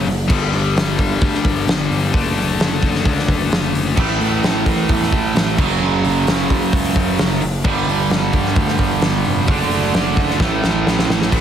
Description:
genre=hard rock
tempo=131 BPM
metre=4/4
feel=straight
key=A mixolydian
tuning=A4 = 440 Hz
part: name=scooped high-gain guitar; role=riff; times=0.0-11.4 s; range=F#2 to D4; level=-20 LUFS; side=left 6 dB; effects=distortion
part: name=fuzz picked electric bass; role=bass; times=0.0-11.4 s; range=F1 to E2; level=-22 LUFS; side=equal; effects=overdrive
part: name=big rock drum kit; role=drums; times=0.1-11.4 s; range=crash cymbal, hi-hat, kick drum, snare drum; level=-19 LUFS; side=equal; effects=none
part: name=cranked stack guitar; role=riff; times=4.0-11.4 s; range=F#2 to D4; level=-20 LUFS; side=right 11 dB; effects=overdrive
room=small room ambience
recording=dense, heavily limited modern master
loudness=-14 LUFS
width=side -9 dB against mid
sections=0.0-11.3 A section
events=drum fill 10.4-11.3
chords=0.3 G5; 2.1 D/F#; 4.0 A5; 5.6 F#5; 7.7 G5; 9.5 D/F#; 10.4 A5

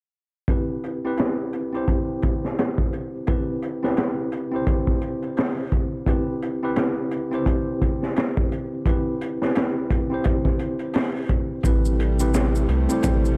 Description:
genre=trip hop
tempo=86 BPM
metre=4/4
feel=swing 59% on 16ths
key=A minor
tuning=A4 = 440 Hz
part: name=tine electric piano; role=accompaniment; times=0.5-13.4 s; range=C4 to C5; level=-28 LUFS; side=equal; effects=harmonic tremolo, tape echo
part: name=crunchy breakbeat drum kit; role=drums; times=0.5-13.2 s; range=hi-hat, kick drum, snare drum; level=-26 LUFS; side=equal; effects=low-pass filter on kick, low-pass filter on hats, low-pass filter on snare, low-pass filter on room
part: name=dark studio string section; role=sustained chords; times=11.6-13.4 s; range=C3 to A3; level=-31 LUFS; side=equal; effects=none
part: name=round analog bass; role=bass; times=11.6-13.4 s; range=A1 to C2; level=-24 LUFS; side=equal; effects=none
part: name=maracas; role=percussion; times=11.6-13.4 s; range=none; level=-40 LUFS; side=equal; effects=none
room=small room ambience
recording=dry, gritty hardware recording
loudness=-24 LUFS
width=mono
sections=0.5-13.4 A section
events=none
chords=0.5 Am7

